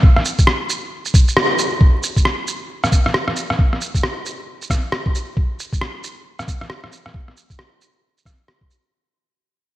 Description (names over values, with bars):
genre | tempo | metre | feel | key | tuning
future garage | 135 BPM | 4/4 | swing 61% on 16ths | none | none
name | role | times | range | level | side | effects
electronic kick drum | drums | 0.0-8.7 s | none | -14 LUFS | equal | small room reverb
electronic rim click and shaker | drums | 0.2-8.8 s | none | -20 LUFS | equal | small room reverb
room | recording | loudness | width
moderate lush hall reverb, RT60 1.9 s, digital ambience | bright 1980s-style digital production, vinyl crackle | -16 LUFS | side -15 dB against mid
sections
0.0-1.8 A section; 1.8-8.9 B section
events
kick drops out 1.4-1.8; band accent 1.4; fade-out 1.8-8.9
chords
none